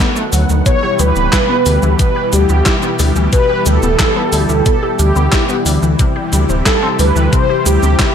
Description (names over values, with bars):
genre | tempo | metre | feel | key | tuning
synthwave | 90 BPM | 4/4 | straight | unclear | A4 = 439 Hz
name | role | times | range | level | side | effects
warm analog pad | sustained chords | 0.0-8.1 s | B2 to F#5 | -19 LUFS | equal | chorus, sidechain pumping
wide unison pluck | arpeggios | 0.0-8.1 s | B2 to G4 | -20 LUFS | left 3 dB | analog chorus, tape echo
gated 80s digital drum machine | drums | 0.2-8.1 s | handclaps, hi-hat, shaker, snare drum | -19 LUFS | equal | gated reverb, gated reverb snare, overdrive
dark detuned saw bass | bass | 0.3-8.0 s | D1 to D2 | -13 LUFS | equal | sidechain pumping
mellow synth brass | melody | 0.7-8.1 s | G4 to C#5 | -17 LUFS | right 1 dB | chorus, tape echo
electronic kick drum | drums | 0.7-8.1 s | none | -15 LUFS | equal | overdrive
room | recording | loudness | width
moderate plate reverb, RT60 2.1 s | dreamy mix soaked in reverb | -11 LUFS | side -8 dB against mid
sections
0.0-8.1 A section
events
none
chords
0.0 B7; 0.7 Em/D; 6.0 C/D